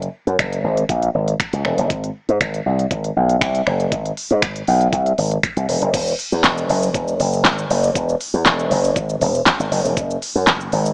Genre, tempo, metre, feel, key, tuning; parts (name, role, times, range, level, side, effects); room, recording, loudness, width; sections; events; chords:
dance-pop; 119 BPM; 4/4; straight; A4 = 439 Hz
slap bass with an envelope filter; bass; 0.0-10.9 s; E1 to G#2; -20 LUFS; equal; sidechain pumping
pop drum kit; drums; 0.0-10.9 s; crash cymbal, finger snaps, handclaps, hi-hat, kick drum, shaker, snare drum; -22 LUFS; equal
light reverb, digital ambience; small speaker sound; -19 LUFS; mono
0.0-5.9 A section; 5.9-10.9 B section